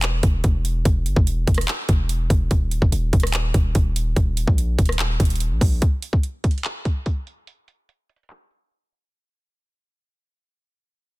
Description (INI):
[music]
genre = hip hop, trap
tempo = 145 BPM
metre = 4/4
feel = half-time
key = unclear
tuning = A4 = 442 Hz
[part]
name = hard-hitting 808-style bass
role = bass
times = 0.0-5.8 s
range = D#1 to A#1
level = -22 LUFS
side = equal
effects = none
[part]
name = trap drum kit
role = drums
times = 0.0-9.0 s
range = handclaps, hi-hat, kick drum, rim click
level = -19 LUFS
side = equal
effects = none
[sound]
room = digital ambience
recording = dense, heavily limited modern master, low-pass filter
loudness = -18 LUFS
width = side -21 dB against mid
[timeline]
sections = 0.0-5.8 A section; 5.8-9.1 B section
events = fade-out 5.8-9.1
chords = none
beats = 0.03 0.44 | 0.85 1.27 1.68 2.10 | 2.51 2.92 3.34 3.75 | 4.16 4.58 4.99 5.41 | 5.82 6.23 6.65 7.06 | 7.47 7.89 8.30 8.72